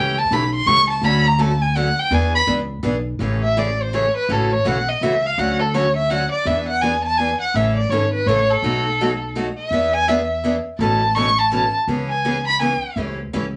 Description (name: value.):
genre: acoustic string swing (jazz manouche).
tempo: 166 BPM.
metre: 3/4.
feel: swing 62% on 8ths.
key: A major.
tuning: A4 = 437 Hz.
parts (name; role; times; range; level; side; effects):
warm violin; melody; 0.0-13.0 s; A4 to C#6; -21 LUFS; equal; none.
picked steel-string acoustic guitar; accompaniment; 0.0-13.4 s; B2 to A4; -26 LUFS; equal; none.
upright bass; bass; 0.0-13.6 s; G#1 to E2; -25 LUFS; equal; none.
room: wet studio ambience, RT60 0.5 s.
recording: none.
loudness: -19 LUFS.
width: mono.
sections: 0.0-3.2 A section; 3.2-11.9 A section; 11.9-13.6 A section.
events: violin solo 0.0-3.2, 3.2-13.6.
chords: 0.0 A7; 1.0 Dmaj7; 2.1 E7; 3.2 Amaj7; 4.3 F#m7/A; 5.4 Dmaj7; 6.5 E7; 7.5 A; 8.6 B7; 9.7 E7; 10.8 Aadd9; 11.9 C#m7; 13.0 A7/C#.